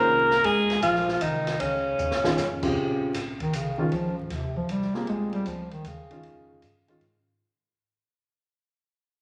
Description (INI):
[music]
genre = modal jazz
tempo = 155 BPM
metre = 3/4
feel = swing 67% on 8ths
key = Bb dorian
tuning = A4 = 440 Hz
[part]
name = warm alto saxophone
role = melody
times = 0.0-2.6 s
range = Db4 to Bb4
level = -25 LUFS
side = equal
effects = none
[part]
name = mellow bass clarinet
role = second line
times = 0.0-7.0 s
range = Ab2 to Bb3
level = -32 LUFS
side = equal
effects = none
[part]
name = warm concert grand piano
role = accompaniment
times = 0.0-7.0 s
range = Db3 to Ab4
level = -31 LUFS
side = equal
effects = none
[part]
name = upright bass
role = bass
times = 0.0-7.4 s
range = Bb1 to Bb2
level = -41 LUFS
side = equal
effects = none
[part]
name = open jazz drum kit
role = drums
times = 0.3-7.1 s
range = crash cymbal, hi-hat, kick drum, ride cymbal, snare drum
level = -37 LUFS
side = equal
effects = none
[sound]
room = wet large studio reverb, RT60 1.4 s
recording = vinyl crackle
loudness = -26 LUFS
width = mono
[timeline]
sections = 0.0-2.8 A section; 2.8-7.4 B section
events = drum fill 2.0-2.4; fade-out 2.8-7.4; bass clarinet solo 2.8-7.4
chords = 0.0 Bbm11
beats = 0.05 | 0.43 0.82 1.21 | 1.59 1.98 2.37 | 2.75 3.14 3.53 | 3.91 4.30 4.69 | 5.08 5.46 5.85 | 6.24 6.62 7.01